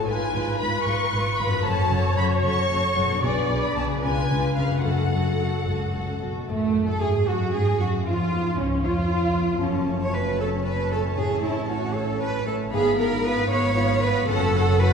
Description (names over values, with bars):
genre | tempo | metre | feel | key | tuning
classical, dramatic, fast romantic movement for symphony orchestra | 76 BPM (dotted quarters) | 6/8 | straight | F# minor | A4 = 436 Hz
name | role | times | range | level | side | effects
warm symphonic violin section | melody | 0.0-14.9 s | A3 to C#6 | -30 LUFS | left 3 dB | none
warm symphonic violin section | second line | 0.0-14.9 s | A3 to F#5 | -32 LUFS | left 2 dB | none
warm studio viola section | accompaniment | 0.0-14.9 s | A3 to D5 | -29 LUFS | right 1 dB | none
concert harp | arpeggios | 0.0-14.9 s | F#2 to C#5 | -27 LUFS | left 2 dB | none
warm chamber cello section | bass | 0.0-14.9 s | C#2 to C#5 | -27 LUFS | right 2 dB | none
warm symphonic double bass section | bass | 0.0-14.9 s | F#1 to A2 | -28 LUFS | right 2 dB | none
room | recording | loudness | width
wet concert hall reverb, RT60 2.2 s | heard from further back in the room | -21 LUFS | side -6 dB against mid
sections
0.0-6.5 A section; 6.5-14.9 A section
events
none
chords
0.1 Fdim/Ab; 1.6 F#m; 3.2 G#dim/B; 4.0 C#7b9; 4.8 F#m; 6.5 F#m/A; 8.1 C#7; 9.6 F#m; 11.2 F#m/A; 12.7 Fdim/Ab; 14.3 F#m